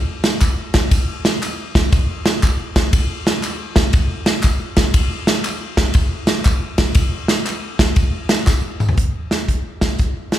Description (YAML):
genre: gospel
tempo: 119 BPM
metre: 4/4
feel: swing 66% on 8ths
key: none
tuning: none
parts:
  - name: natural country drum kit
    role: drums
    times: 0.2-10.4 s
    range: hi-hat, kick drum, ride cymbal, snare drum, toms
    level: -15 LUFS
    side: equal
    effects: none
  - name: tambourine and handclaps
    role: percussion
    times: 0.2-8.9 s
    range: none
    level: -30 LUFS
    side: equal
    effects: slapback echo
room: light reverb, studio ambience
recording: live gig heard through the venue's PA, club reverb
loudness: -15 LUFS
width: side -12 dB against mid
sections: 0.0-9.0 A section; 9.0-10.4 B section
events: drum fill 8.5-9.0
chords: none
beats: 0.41 | 0.92 1.42 1.92 2.43 | 2.93 3.43 3.94 4.44 | 4.94 5.45 5.95 6.45 | 6.96 7.46 7.97 8.47 | 8.98 9.49 9.99